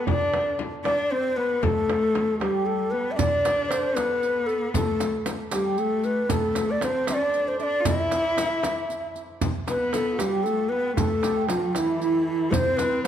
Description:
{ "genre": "Persian modal ensemble", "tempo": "77 BPM (dotted quarters)", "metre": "6/8", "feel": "straight", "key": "unclear", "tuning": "A4 = 437 Hz", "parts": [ { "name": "breathy mellow ney", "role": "melody", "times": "0.0-13.1 s", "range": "E4 to E5", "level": "-25 LUFS", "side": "equal", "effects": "none" }, { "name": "santur", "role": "second line", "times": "0.0-13.1 s", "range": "E4 to E5", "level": "-33 LUFS", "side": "right 4 dB", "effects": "none" }, { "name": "warm cello", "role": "second line", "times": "0.0-13.1 s", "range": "E3 to F4+47c", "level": "-29 LUFS", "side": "left 3 dB", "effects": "none" }, { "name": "frame drum", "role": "percussion", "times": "0.1-13.1 s", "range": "none", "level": "-32 LUFS", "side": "left 6 dB", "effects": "none" }, { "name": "tombak", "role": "percussion", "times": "0.1-13.1 s", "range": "none", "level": "-31 LUFS", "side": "right 5 dB", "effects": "none" }, { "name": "riq", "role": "percussion", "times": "3.2-13.1 s", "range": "none", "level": "-36 LUFS", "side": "right 6 dB", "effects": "none" } ], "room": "moderate concert hall reverb, RT60 2.3 s", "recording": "dark, warm production", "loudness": "-22 LUFS", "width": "side -9 dB against mid", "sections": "0.0-9.4 A section; 9.4-13.1 B section", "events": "none", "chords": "none" }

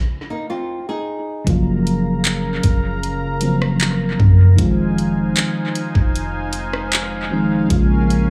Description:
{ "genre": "contemporary R&B", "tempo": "77 BPM", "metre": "4/4", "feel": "straight", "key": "unclear", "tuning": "A4 = 440 Hz", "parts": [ { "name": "flamenco guitar", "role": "arpeggios", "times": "0.3-1.4 s", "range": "Bb3 to Ab4", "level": "-27 LUFS", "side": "equal", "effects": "analog delay" }, { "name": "mellow FM electric piano", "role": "accompaniment", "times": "1.4-8.3 s", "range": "Db3 to F4", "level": "-22 LUFS", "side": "equal", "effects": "chorus, analog delay" }, { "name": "warm analog pad", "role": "sustained chords", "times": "1.5-8.3 s", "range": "Db3 to Bb5", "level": "-28 LUFS", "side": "equal", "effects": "chorus" }, { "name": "soft 808-style bass", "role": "bass", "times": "1.5-8.3 s", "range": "F1 to Gb2", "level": "-21 LUFS", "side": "equal", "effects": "none" }, { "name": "smooth R&B drum kit", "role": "drums", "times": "1.5-8.3 s", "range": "handclaps, hi-hat, kick drum, rim click", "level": "-22 LUFS", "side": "equal", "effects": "analog delay" } ], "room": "digital ambience", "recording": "echo-heavy mix, studio ambience", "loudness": "-18 LUFS", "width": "mono", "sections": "0.0-1.5 A section; 1.5-8.3 B section", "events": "stop 0.0-1.5", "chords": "0.0 Dbmaj7 (rootless); 1.5 Gbmaj7; 4.6 Fm7; 7.7 Bbm7" }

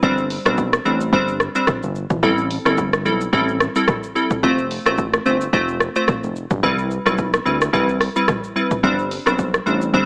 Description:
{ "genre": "afrobeats", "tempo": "109 BPM", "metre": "4/4", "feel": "swing 55% on 16ths", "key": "G mixolydian", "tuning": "A4 = 440 Hz", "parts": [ { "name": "glassy wavetable pluck", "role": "accompaniment", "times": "0.0-10.1 s", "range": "G3 to C5", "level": "-18 LUFS", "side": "equal", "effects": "chorus" }, { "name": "fat analog bass", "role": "bass", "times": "0.0-10.1 s", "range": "E1 to D2", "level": "-24 LUFS", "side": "equal", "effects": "none" }, { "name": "deep house drum kit", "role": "drums", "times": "0.0-10.1 s", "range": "hi-hat, kick drum, rim click, shaker, toms", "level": "-20 LUFS", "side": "equal", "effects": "none" } ], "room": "light reverb, digital ambience", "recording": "dry, gritty hardware recording, transformer saturation, small speaker sound", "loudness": "-16 LUFS", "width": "side -29 dB against mid", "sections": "0.0-10.1 A section", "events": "none", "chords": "0.0 Gsus4; 2.2 Am7; 4.4 F; 6.6 Cmaj7; 8.8 Gsus4" }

